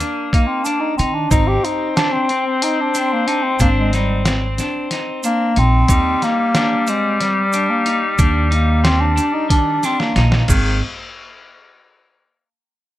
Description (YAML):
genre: progressive instrumental, band music in an uneven meter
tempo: 183 BPM (eighths)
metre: 7/8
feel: straight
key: Ab lydian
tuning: A4 = 439 Hz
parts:
  - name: bright alto saxophone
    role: second line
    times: 0.0-10.8 s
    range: Eb3 to C4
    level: -22 LUFS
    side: left 4 dB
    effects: none
  - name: clean electric guitar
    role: arpeggios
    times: 0.0-10.8 s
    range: Eb3 to Eb4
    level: -24 LUFS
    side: equal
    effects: none
  - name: trip hop sampler-style drum kit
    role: drums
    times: 0.0-10.6 s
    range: crash cymbal, hi-hat, kick drum, snare drum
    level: -19 LUFS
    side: equal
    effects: none
  - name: tube shaker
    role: percussion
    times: 0.0-10.8 s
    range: none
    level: -29 LUFS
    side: right 8 dB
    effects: none
  - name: warm bass clarinet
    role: melody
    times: 0.3-10.3 s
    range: G3 to G4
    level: -19 LUFS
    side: equal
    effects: tape echo
  - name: upright bass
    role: bass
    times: 1.0-10.8 s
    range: Ab1 to Eb3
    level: -17 LUFS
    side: equal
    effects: none
room: little or no reverb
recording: none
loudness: -14 LUFS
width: side -14 dB against mid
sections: 0.0-10.5 A section; 10.5-12.8 B section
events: bass clarinet solo 0.0-10.5; drum fill 10.0-10.5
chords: 0.0 Eb5; 1.3 Ab; 5.9 Eb6; 10.5 Ab5